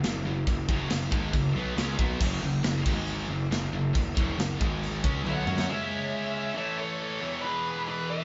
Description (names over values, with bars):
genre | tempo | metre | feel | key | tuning
heavy metal | 138 BPM | 4/4 | straight | F# minor | A4 = 440 Hz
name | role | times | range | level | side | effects
crunchy overdriven guitar | riff | 0.0-8.2 s | E2 to F#4 | -40 LUFS | equal | none
heavy high-gain guitar | riff | 0.0-8.2 s | E2 to F#4 | -37 LUFS | equal | distortion
fuzz picked electric bass | bass | 0.0-5.7 s | F#1 to F#2 | -34 LUFS | equal | overdrive
tight metal drum kit | drums | 0.0-5.7 s | china cymbal, crash cymbal, kick drum, snare drum, toms | -32 LUFS | equal | none
high-gain distorted guitar | riff | 0.1-8.2 s | E2 to F#4 | -38 LUFS | equal | distortion
nasal lead guitar with a parked wah | melody | 5.3-8.2 s | B4 to F#5 | -35 LUFS | equal | overdrive
high-gain lead guitar | second line | 5.3-8.2 s | G#4 to C#5 | -40 LUFS | equal | distortion
room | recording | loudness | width
moderate studio reverb, RT60 0.5 s | band playing live in one room, nothing above 7.7 kHz | -29 LUFS | mono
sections
0.0-5.7 A section; 5.7-8.2 B section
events
drum fill 5.2-5.7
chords
0.0 F#5; 2.9 G#5; 3.3 F#5; 4.6 G#5; 5.0 F#5; 5.7 C#m; 6.5 A; 7.2 E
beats
0.03 | 0.47 0.90 1.33 1.77 | 2.20 2.64 3.07 3.50 | 3.94 4.37 4.81 5.24 | 5.67 6.11 6.54 6.97 | 7.41 7.84